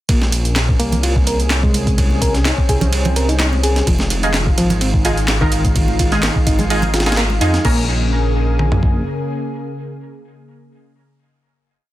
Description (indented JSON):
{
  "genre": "breakbeat, breaks",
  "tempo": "127 BPM",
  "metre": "4/4",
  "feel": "swing 54% on 16ths",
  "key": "Bb minor",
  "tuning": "A4 = 441 Hz",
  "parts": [
    { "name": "lush unison pad", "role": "sustained chords", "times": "0.4-10.8 s", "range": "Db3 to Ab4", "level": "-24 LUFS", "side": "equal", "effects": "chorus, vintage 12-bit sampler grit, sidechain pumping" },
    { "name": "reed electric piano", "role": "riff", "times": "0.1-7.9 s", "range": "Eb3 to Bb4", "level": "-22 LUFS", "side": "equal", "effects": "fast tremolo, tape echo" },
    { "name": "dark detuned saw bass", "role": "bass", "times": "0.1-9.0 s", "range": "F1 to F2", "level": "-18 LUFS", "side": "equal", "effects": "none" },
    { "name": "breakbeat sampler-style drum kit", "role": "drums", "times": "0.1-8.9 s", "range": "crash cymbal, kick drum, ride cymbal, snare drum, toms", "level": "-18 LUFS", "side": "equal", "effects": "none" },
    { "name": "punchy analog drum machine", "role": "drums", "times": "0.1-7.6 s", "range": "handclaps, hi-hat", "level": "-24 LUFS", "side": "right 1 dB", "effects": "none" },
    { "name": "congas", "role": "percussion", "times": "0.2-7.4 s", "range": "none", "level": "-24 LUFS", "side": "right 4 dB", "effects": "none" },
    { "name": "orchestra-hit-like synth stab", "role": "stabs", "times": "4.2-10.8 s", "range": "Db4 to Bb4", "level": "-23 LUFS", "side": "right 2 dB", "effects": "built-in reverb, cassette tape, tape echo" }
  ],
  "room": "light reverb",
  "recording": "dense, heavily limited modern master",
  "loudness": "-14 LUFS",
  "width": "side -15 dB against mid",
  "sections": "0.1-7.6 drop; 7.6-11.4 final chord",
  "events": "drop 0.1-7.6; band accent 7.2",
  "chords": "0.1 Bbm7; 3.9 Fm7; 7.6 Bbm7",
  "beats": "| 0.09 0.56 1.03 1.51 | 1.98 2.45 2.92 3.40 | 3.87 4.34 4.81 5.29 | 5.76 6.23 6.70 7.17 | 7.65 8.12 8.59 9.06 | 9.54 10.01 10.48"
}